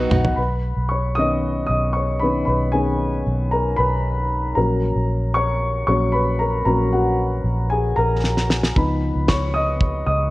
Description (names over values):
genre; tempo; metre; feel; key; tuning
piano-driven pop; 114 BPM; 4/4; straight; B major; A4 = 439 Hz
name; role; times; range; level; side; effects
dark upright piano; accompaniment; 0.0-10.3 s; D#3 to D#6; -20 LUFS; left 1 dB; none
vintage muted fingered electric bass; bass; 0.0-10.3 s; A#1 to C#2; -22 LUFS; equal; none
damped 70s drum kit; drums; 0.1-0.4, 8.2-9.9 s; kick drum, snare drum, toms; -20 LUFS; equal; none
room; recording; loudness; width
light reverb; worn, warbling old tape, cassette tape, warbly pitch drift; -18 LUFS; side -18 dB against mid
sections
0.4-10.3 A section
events
drum fill 0.0-0.4, 8.2-8.8; upright piano solo 0.4-10.3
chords
0.4 Badd9; 4.6 F#/A#; 8.8 C#7